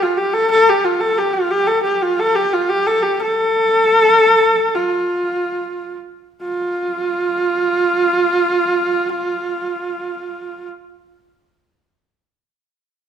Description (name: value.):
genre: mongolian traditional.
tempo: 68-91 BPM.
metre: 4/4.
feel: straight.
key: F gong mode.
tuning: A4 = 444 Hz.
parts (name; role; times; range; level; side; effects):
clear horsehead fiddle; melody; 0.0-10.7 s; F4 to A4; -15 LUFS; equal; none.
room: moderate recital hall reverb, RT60 1.3 s.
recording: none.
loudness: -14 LUFS.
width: side -8 dB against mid.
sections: 0.0-6.4 A section; 6.4-9.9 B section.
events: slowing down 0.5-6.4.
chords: none.